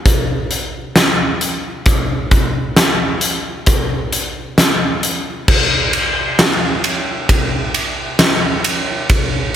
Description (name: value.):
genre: rock.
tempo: 66 BPM.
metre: 4/4.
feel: straight.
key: none.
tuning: none.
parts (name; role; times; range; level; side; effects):
huge arena drum kit; drums; 0.1-9.3 s; crash cymbal, hi-hat, kick drum, ride cymbal, snare drum; -13 LUFS; equal; none.
room: little or no reverb.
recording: none.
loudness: -13 LUFS.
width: side -10 dB against mid.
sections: 0.0-5.5 A section; 5.5-9.6 B section.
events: build-up 5.5-9.6.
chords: none.